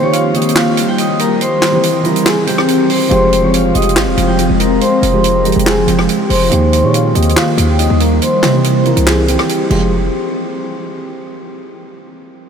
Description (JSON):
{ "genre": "hip hop, trap", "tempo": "141 BPM", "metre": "4/4", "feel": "half-time", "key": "F minor", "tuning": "A4 = 440 Hz", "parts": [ { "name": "vibraphone with medium hard mallets", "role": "melody", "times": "0.0-9.9 s", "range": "F4 to Eb6", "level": "-16 LUFS", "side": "left 1 dB", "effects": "low-pass filter, tape echo" }, { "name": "felt-muted upright piano", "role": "accompaniment", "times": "0.0-9.9 s", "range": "Eb3 to G4", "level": "-18 LUFS", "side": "right 2 dB", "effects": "low-pass filter" }, { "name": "glassy FM pad", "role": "sustained chords", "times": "0.0-9.9 s", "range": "Eb3 to G4", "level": "-18 LUFS", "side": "equal", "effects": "ensemble chorus, built-in reverb, phaser, low-pass filter" }, { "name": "compact cocktail drum kit", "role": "drums", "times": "0.1-9.8 s", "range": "crash cymbal, handclaps, hi-hat, rim click, snare drum", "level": "-18 LUFS", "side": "right 2 dB", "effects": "none" }, { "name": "hard-hitting 808-style bass", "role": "bass", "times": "3.1-10.1 s", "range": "F1 to C3", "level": "-15 LUFS", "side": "equal", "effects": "none" } ], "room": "wet huge ambient reverb, RT60 7.7 s", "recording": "dreamy mix soaked in reverb", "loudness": "-10 LUFS", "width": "side -7 dB against mid", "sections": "0.0-9.9 A section; 9.9-11.6 B section", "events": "break 0.0-3.1; filter sweep 0.0-9.9", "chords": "0.0 Eb; 1.4 C; 3.1 Fmadd9; 6.5 Eb; 8.2 C; 9.7 Fmadd9; 9.9 N.C.", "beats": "0.13 0.56 0.98 | 1.41 1.83 2.26 2.68 | 3.11 3.54 3.96 4.39 | 4.81 5.24 5.66 6.09 | 6.51 6.94 7.37 7.79 | 8.22 8.64 9.07 9.49 | 9.92" }